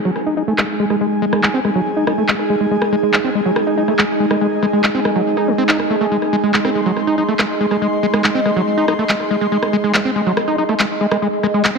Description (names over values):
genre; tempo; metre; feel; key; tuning
psychedelic trance; 141 BPM; 4/4; straight; G# major; A4 = 440 Hz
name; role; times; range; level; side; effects
overtone-sweeping drone; sustained chords; 0.2-11.8 s; G#3; -21 LUFS; right 3 dB; chorus, built-in reverb, phaser, vintage 12-bit sampler grit
airy breathy pad; texture; 0.0-11.8 s; D#4 to B#5; -22 LUFS; equal; chorus
overdriven acid bass; riff; 0.1-11.8 s; F#3 to D#4; -18 LUFS; left 1 dB; distortion, auto-pan, ping-pong delay
electronic rim click and handclaps; drums; 0.2-11.7 s; none; -20 LUFS; equal; low-pass filter on snare, low-pass filter on hats, low-pass filter on room
room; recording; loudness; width
wet lush hall reverb, RT60 1.9 s; heavily compressed radio sound; -14 LUFS; side -4 dB against mid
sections
0.0-11.8 A section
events
filter sweep on acid bass 0.0-11.8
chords
0.0 G#5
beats
0.16 0.58 | 1.01 1.43 1.86 2.29 | 2.71 3.14 3.56 3.99 | 4.41 4.84 5.26 5.69 | 6.12 6.54 6.97 7.39 | 7.82 8.24 8.67 9.09 | 9.52 9.95 10.37 10.80 | 11.22 11.65